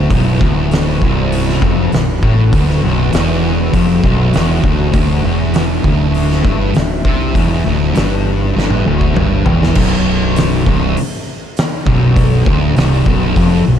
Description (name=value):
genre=stoner and doom metal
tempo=100 BPM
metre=4/4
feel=straight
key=B phrygian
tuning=A4 = 440 Hz
part: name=metallic inharmonic drone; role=sustained chords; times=0.0-9.7 s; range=D3 to B4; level=-27 LUFS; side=left 1 dB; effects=chorus, built-in reverb
part: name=thick fuzz guitar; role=riff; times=0.0-13.8 s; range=B1 to C3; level=-16 LUFS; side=left 8 dB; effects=distortion
part: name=thick fuzz guitar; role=riff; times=0.0-13.8 s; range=B1 to C3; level=-16 LUFS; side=right 8 dB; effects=distortion
part: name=fuzz fingered electric bass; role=bass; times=0.0-13.8 s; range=B0 to C2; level=-18 LUFS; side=equal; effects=overdrive
part: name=oversized low-tuned drum kit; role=drums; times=0.1-13.5 s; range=crash cymbal, hi-hat, kick drum, snare drum, toms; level=-16 LUFS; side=equal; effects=none
room=small room ambience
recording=dark, warm production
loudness=-11 LUFS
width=side -9 dB against mid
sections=0.0-9.8 A section; 9.8-13.8 B section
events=drum fill 8.6-9.8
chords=0.1 Bm; 4.9 D5; 9.8 Bm